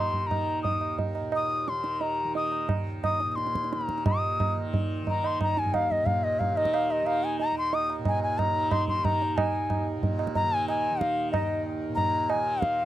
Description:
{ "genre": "indian classical, Hindustani", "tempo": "180 BPM", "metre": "4/4", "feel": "straight", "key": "Eb raga durga", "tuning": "A4 = 440 Hz", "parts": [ { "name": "bright reedy bansuri", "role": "melody", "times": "0.0-12.8 s", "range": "Eb5 to Eb6", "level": "-27 LUFS", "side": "left 2 dB", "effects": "none" }, { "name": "tanpura", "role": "drone", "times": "0.0-12.8 s", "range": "Eb2 to Eb3", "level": "-34 LUFS", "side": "right 2 dB", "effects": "none" }, { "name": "tabla", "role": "percussion", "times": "0.1-12.7 s", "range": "none", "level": "-28 LUFS", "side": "right 3 dB", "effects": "none" } ], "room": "little or no reverb", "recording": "dry, close 1970s-style studio recording", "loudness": "-25 LUFS", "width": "side -13 dB against mid", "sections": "0.0-4.1 A section; 4.1-12.8 B section", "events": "speeding up 0.0-12.8", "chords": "none" }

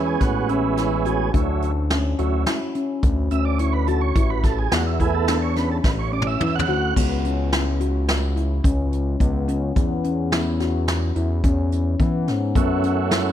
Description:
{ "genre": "progressive instrumental, band music in an uneven meter", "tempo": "107 BPM", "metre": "5/4", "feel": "straight", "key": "A major", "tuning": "A4 = 440 Hz", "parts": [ { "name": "tonewheel organ", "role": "accompaniment", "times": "0.0-6.9, 12.6-13.3 s", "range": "F#3 to F#5", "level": "-25 LUFS", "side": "right 9 dB", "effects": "chorus vibrato" }, { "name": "handpan", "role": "arpeggios", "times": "0.0-13.3 s", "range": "B3 to F#4", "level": "-25 LUFS", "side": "left 4 dB", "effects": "diffuse ambient delay" }, { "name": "smooth gliding synth bass", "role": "bass", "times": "0.0-13.3 s", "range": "A1 to E3", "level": "-23 LUFS", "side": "equal", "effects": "none" }, { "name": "vintage brush drum kit", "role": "drums", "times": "0.2-13.2 s", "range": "crash cymbal, hi-hat, kick drum, snare drum, toms", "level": "-23 LUFS", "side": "equal", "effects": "none" } ], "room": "light reverb", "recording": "none", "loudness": "-19 LUFS", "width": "side -10 dB against mid", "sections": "0.0-7.0 A section; 7.0-13.3 B section", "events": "tonewheel organ solo 0.0-7.0; drum fill 5.8-7.0", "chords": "0.0 Amaj7; 1.3 Dmaj7; 4.2 Asus2; 7.0 N.C.; 12.6 Dmaj7/F# (rootless)" }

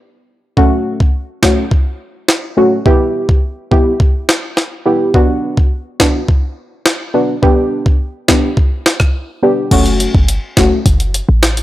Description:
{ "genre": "dancehall", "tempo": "105 BPM", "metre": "4/4", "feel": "straight", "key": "F# phrygian", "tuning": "A4 = 440 Hz", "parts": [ { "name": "deep mellow chord stab", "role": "accompaniment", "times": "0.6-10.8 s", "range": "A3 to G4", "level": "-13 LUFS", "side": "equal", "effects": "chorus" }, { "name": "jungle sampler-style drum kit", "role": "drums", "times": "0.6-11.6 s", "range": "crash cymbal, finger snaps, hi-hat, kick drum, rim click, snare drum", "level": "-12 LUFS", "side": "equal", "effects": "none" }, { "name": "short 808-style bass", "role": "bass", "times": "9.7-11.6 s", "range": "F#1 to A1", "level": "-14 LUFS", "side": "equal", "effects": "none" } ], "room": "light reverb, digital ambience", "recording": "dry, gritty hardware recording, transformer saturation", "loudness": "-11 LUFS", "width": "side -15 dB against mid", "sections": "0.0-9.7 A section; 9.7-11.6 B section", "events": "break 0.0-0.6, 9.1-9.7", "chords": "0.0 N.C.; 0.6 F#m; 2.9 Em; 5.1 Bm; 7.4 G; 9.7 F#m" }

